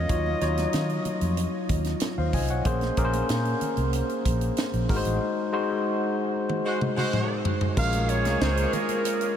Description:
polished 1980s jazz-funk pop; 94 BPM; 4/4; straight; Bb minor; A4 = 440 Hz
breathy clarinet; melody; 0.0-1.7, 7.8-9.4 s; Bb4 to F5; -31 LUFS; right 1 dB; analog delay
barky tine electric piano; accompaniment; 0.0-9.4 s; Gb3 to Ab5; -27 LUFS; left 2 dB; overdrive, wide subtle chorus
vintage muted fingered electric bass; bass; 0.0-8.6 s; Ab1 to Eb3; -27 LUFS; equal
tight funk drum kit; drums; 0.1-9.4 s; crash cymbal, hi-hat, kick drum, snare drum, toms; -30 LUFS; right 1 dB
congas; percussion; 0.1-9.2 s; -41 LUFS; right 4 dB
clear horn section; second line; 6.6-9.4 s; Ab3 to Db5; -30 LUFS; right 2 dB; analog delay
moderate huge ambient reverb, RT60 7.3 s; dreamy mix soaked in reverb; -23 LUFS; side -9 dB against mid
0.0-7.8 A section; 7.8-9.4 B section
band accent 5.2-7.8; drum fill 6.5-7.8
0.1 Ebm9; 2.7 Bbm9; 4.9 Ab7; 7.8 Bbm7

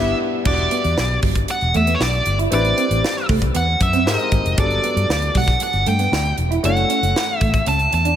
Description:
polished 1980s jazz-funk pop; 116 BPM; 4/4; straight; E minor; A4 = 438 Hz
nasal lead guitar with a parked wah; melody; 0.0-8.2 s; C#5 to A5; -20 LUFS; right 1 dB; overdrive, tape echo
clear grand piano; accompaniment; 0.0-8.2 s; F#3 to B4; -25 LUFS; left 3 dB; lush chorus
vintage muted fingered electric bass; bass; 0.0-8.1 s; E1 to G#2; -20 LUFS; equal
electric guitar at the edge of break-up; riff; 0.5-8.1 s; G3 to E4; -26 LUFS; right 4 dB; lush chorus
crisp fusion drum kit; drums; 0.5-8.2 s; crash cymbal, hi-hat, kick drum, snare drum; -23 LUFS; equal
moderate church reverb, RT60 3.3 s; dreamy mix soaked in reverb; -16 LUFS; side -10 dB against mid
0.5-8.2 A section
band accent 0.0-0.5
0.5 Em9; 2.5 Am11; 4.1 G#maj7; 4.6 Gmaj7; 6.6 F#m7

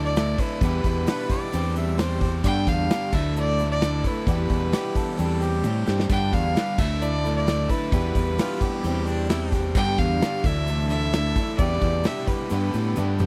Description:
folk rock and heartland rock; 131 BPM; 4/4; straight; G major; A4 = 440 Hz
clear fiddle; melody; 0.0-13.2 s; B4 to G5; -31 LUFS; equal
picked swing-style acoustic guitar; accompaniment; 0.0-13.3 s; G2 to B4; -33 LUFS; equal
overdriven semi-hollow guitar; riff; 0.0-13.3 s; E2 to G4; -32 LUFS; equal
fingered electric bass; bass; 0.0-13.3 s; D2 to A2; -27 LUFS; equal
natural country drum kit; drums; 0.2-13.3 s; crash cymbal, hi-hat, kick drum, snare drum, toms; -28 LUFS; equal
egg shaker; percussion; 0.2-13.3 s; -51 LUFS; equal
clear harmonica; second line; 1.1-9.6 s; D4 to E5; -36 LUFS; equal
little or no reverb; dry, close 1970s-style studio recording; -24 LUFS; mono
0.0-13.3 A section
drum fill 5.6-6.1, 13.0
0.0 Dsus2; 0.6 Em7; 1.5 Cadd9/E; 2.4 G; 3.1 Dsus2; 4.3 Em7; 5.2 Cadd9/E; 6.1 G; 6.8 Dsus2; 7.9 Em7; 8.8 Cadd9/E; 9.8 G; 10.4 Dsus2; 11.6 Em7; 12.5 Gadd9

